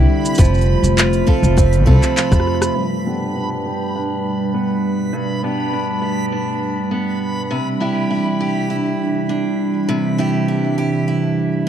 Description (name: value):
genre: folktronica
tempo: 101 BPM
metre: 4/4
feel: straight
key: G mixolydian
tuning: A4 = 440 Hz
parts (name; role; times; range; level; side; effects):
- warbly tape-like pad; sustained chords; 0.0-11.7 s; B2 to F4; -20 LUFS; right 1 dB; chorus, built-in reverb
- picked steel-string acoustic guitar; arpeggios; 0.0-11.7 s; G2 to A4; -21 LUFS; right 2 dB; low-pass filter, tape echo
- upright bass; bass; 0.0-2.7 s; F1 to F2; -15 LUFS; equal; none
- backwards swelling texture; texture; 0.0-11.7 s; B5; -29 LUFS; equal; built-in reverb
- organic electronic drum kit; drums; 0.2-2.7 s; handclaps, hi-hat, rim click, shaker; -21 LUFS; equal; none
- electronic kick drum; drums; 0.4-2.4 s; none; -13 LUFS; equal; none
room: light reverb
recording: dry, close 1970s-style studio recording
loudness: -15 LUFS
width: side -9 dB against mid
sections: 0.0-2.8 A section; 2.8-11.7 B section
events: filter sweep on steel-string acoustic guitar 0.0-2.8, 2.8-11.7; drum fill 2.2-2.8; band accent 2.6; filter sweep on ambient pad 2.8-11.7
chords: 0.4 F; 2.8 Gadd9; 7.5 Cadd9